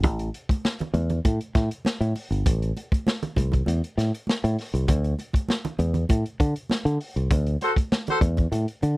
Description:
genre	funk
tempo	99 BPM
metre	4/4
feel	straight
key	A dorian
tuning	A4 = 440 Hz
part	fingered electric bass	bass	0.0-9.0 s	G1 to D3	-23 LUFS	equal	none
part	crunchy breakbeat drum kit	drums	0.0-9.0 s	hi-hat, kick drum, snare drum	-24 LUFS	equal	none
part	congas	percussion	0.0-9.0 s	none	-31 LUFS	right 2 dB	none
part	warm horn section	second line	7.6-8.2 s	F#4 to C5	-22 LUFS	equal	none
room	little or no reverb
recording	dry, close 1970s-style studio recording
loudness	-22 LUFS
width	side -20 dB against mid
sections	0.0-9.0 A section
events	band accent 7.3-9.0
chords	0.0 Am; 4.9 Dsus2

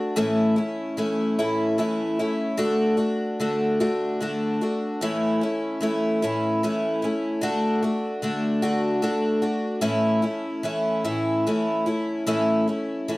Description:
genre	rock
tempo	50 BPM (dotted quarters)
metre	6/8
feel	straight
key	A major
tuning	A4 = 440 Hz
part	picked twelve-string acoustic guitar	solo	0.0-13.2 s	A2 to F#4	-22 LUFS	equal	none
room	light reverb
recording	dry, close 1970s-style studio recording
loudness	-22 LUFS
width	side -20 dB against mid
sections	0.0-13.2 A section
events	none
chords	0.2 A; 2.6 D; 5.0 A; 7.4 D; 9.8 A

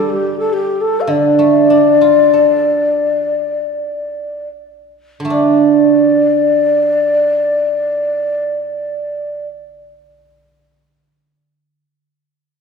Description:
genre	chinese traditional, Chinese chamber ensemble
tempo	70-104 BPM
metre	4/4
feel	rubato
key	D yu mode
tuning	A4 = 441 Hz
part	breathy mellow xiao	melody	0.0-9.5 s	G4 to F5	-13 LUFS	left 4 dB	none
part	guzheng	accompaniment	0.0-11.8 s	D3 to A4	-14 LUFS	right 7 dB	none
room	wet recital hall reverb, RT60 1.8 s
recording	heard from further back in the room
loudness	-11 LUFS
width	side -5 dB against mid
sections	0.0-5.3 A section; 5.3-8.7 B section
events	slowing down 0.0-5.3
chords	none

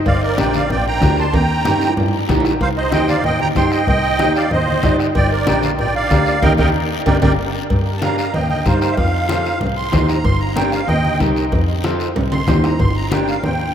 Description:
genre	latin, cumbia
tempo	188 BPM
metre	4/4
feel	straight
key	G minor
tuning	A4 = 440 Hz
part	musette accordion	melody	0.1-13.7 s	Bb4 to C6	-20 LUFS	right 2 dB	none
part	clear double bass	bass	0.1-13.6 s	G1 to G2	-20 LUFS	equal	none
part	bombo	percussion	0.1-13.3 s	none	-21 LUFS	left 1 dB	none
part	cowbell and timbales	percussion	0.1-13.6 s	none	-28 LUFS	right 4 dB	none
part	guiro	percussion	0.1-13.7 s	none	-33 LUFS	left 9 dB	none
part	congas	percussion	0.2-13.6 s	none	-24 LUFS	left 3 dB	none
part	electric guitar at the edge of break-up	accompaniment	0.4-13.3 s	D4 to Eb5	-21 LUFS	equal	none
room	wet cathedral reverb, RT60 6.2 s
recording	in a vast, echoing space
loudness	-14 LUFS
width	side -9 dB against mid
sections	0.0-7.7 A section; 7.7-13.7 B section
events	drum fill 1.3-2.6, 7.2-7.7, 12.2-12.8; band accent 6.4-7.7; accordion solo 7.7-13.7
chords	0.1 Gm; 1.3 Eb; 2.6 Cm; 5.2 Gm; 6.4 Eb; 7.1 Gm; 8.3 Eb; 9.0 F; 9.6 Cm; 10.2 Gm; 10.9 Eb; 11.5 F; 12.2 Cm; 12.8 Gm

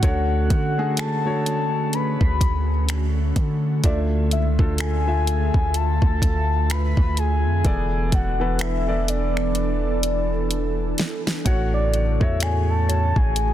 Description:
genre	contemporary R&B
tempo	63 BPM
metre	4/4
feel	swing 58% on 16ths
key	unclear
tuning	A4 = 442 Hz
part	soft octave-layered synth lead	melody	0.0-13.5 s	D5 to B5	-27 LUFS	left 2 dB	chorus, phaser, digital delay
part	warm concert grand piano	accompaniment	0.0-13.5 s	A2 to E5	-29 LUFS	left 1 dB	none
part	ethereal airy pad	sustained chords	0.0-13.5 s	C#3 to E5	-29 LUFS	equal	ensemble chorus, built-in reverb
part	long sustained 808-style bass	bass	0.0-13.5 s	E1 to D3	-22 LUFS	equal	none
part	smooth R&B drum kit	drums	0.0-13.5 s	finger snaps, hi-hat, kick drum, snare drum	-22 LUFS	equal	soft clipping on snare
part	glassy wavetable pluck	texture	11.5-13.5 s	C#5 to F#5	-38 LUFS	right 2 dB	none
room	digital ambience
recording	dense, heavily limited modern master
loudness	-19 LUFS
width	side -12 dB against mid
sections	0.0-11.5 A section; 11.5-13.5 B section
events	drum fill 9.6-11.5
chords	0.0 Dmaj7; 3.8 Dmadd9; 7.6 E7sus4; 11.5 A6

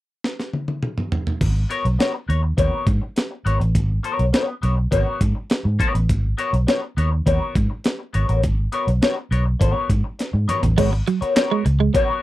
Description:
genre	funk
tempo	102 BPM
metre	4/4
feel	straight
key	G# minor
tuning	A4 = 441 Hz
part	breakbeat sampler-style drum kit	drums	0.2-12.1 s	crash cymbal, handclaps, hi-hat, kick drum, snare drum, toms	-22 LUFS	equal	overdrive
part	vintage muted fingered electric bass	bass	1.4-11.9 s	G#1 to G#2	-19 LUFS	equal	none
part	clean electric guitar	accompaniment	1.7-12.2 s	B3 to C#5	-23 LUFS	left 4 dB	wah
part	clean electric guitar	riff	10.8-12.0 s	F#3 to G#3	-20 LUFS	right 7 dB	none
room	little or no reverb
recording	dry, close 1970s-style studio recording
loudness	-18 LUFS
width	side -16 dB against mid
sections	0.0-1.4 A section; 1.4-10.8 B section; 10.8-12.2 C section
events	drum fill 0.2-1.4, 10.2-10.8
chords	0.0 N.C.; 1.4 G#m11

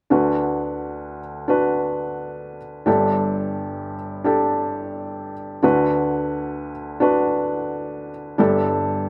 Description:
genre	pop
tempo	87 BPM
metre	4/4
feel	swing 56% on 16ths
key	D major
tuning	A4 = 440 Hz
part	felt-muted upright piano	accompaniment	0.1-9.1 s	G1 to B4	-22 LUFS	equal	none
room	light reverb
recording	recorded outdoors, with no room sound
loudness	-22 LUFS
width	mono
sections	0.1-9.1 A section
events	none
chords	0.1 D6; 2.9 Gsus2; 5.6 D6; 8.4 Gsus2

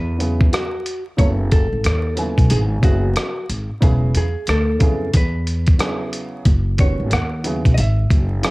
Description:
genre	hip hop, jazz-hop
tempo	91 BPM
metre	4/4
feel	swing 63% on 16ths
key	F# minor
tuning	A4 = 443 Hz
part	vintage hollow-body jazz guitar	melody	0.0-8.5 s	F#4 to F#5	-26 LUFS	equal	none
part	upright bass	bass	0.0-8.4 s	E1 to F2	-19 LUFS	equal	none
part	warm upright piano	accompaniment	0.2-8.5 s	C#3 to G#5	-26 LUFS	right 1 dB	cassette tape
part	dusty soul sampler-style drum kit	drums	0.2-8.5 s	hi-hat, kick drum, rim click	-17 LUFS	equal	cassette tape
room	little or no reverb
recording	home recording on cassette, vinyl crackle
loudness	-16 LUFS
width	side -22 dB against mid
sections	0.0-8.5 A section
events	none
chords	0.0 C#m7/E; 1.2 F#m9; 1.8 B13; 2.5 F#9sus4; 3.8 Eadd9; 4.5 Dm; 5.1 C#m7/E; 6.5 F#sus2; 7.1 B69; 7.8 F#7sus2

